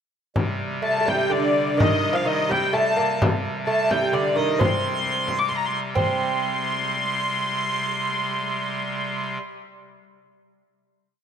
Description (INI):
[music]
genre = medieval dance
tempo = 125-142 BPM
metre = 3/4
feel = straight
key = C dorian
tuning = A4 = 440 Hz
[part]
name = pipe organ, clarinet reed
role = drone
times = 0.4-9.4 s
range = C3 to G3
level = -29 LUFS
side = equal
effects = none
[part]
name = frame drum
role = percussion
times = 0.4-6.2 s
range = none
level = -24 LUFS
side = left 1 dB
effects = none
[part]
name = rich hurdy-gurdy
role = melody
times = 0.8-9.3 s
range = D5 to D6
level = -24 LUFS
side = left 2 dB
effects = none
[part]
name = lute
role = second line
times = 0.8-10.0 s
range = D3 to C4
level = -24 LUFS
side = right 3 dB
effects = none
[sound]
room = moderate lush hall reverb, RT60 2.4 s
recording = rough home demo mix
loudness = -20 LUFS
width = side -8 dB against mid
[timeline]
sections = 0.4-6.0 A section; 6.0-8.6 final chord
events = speeding up 0.4-8.6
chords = none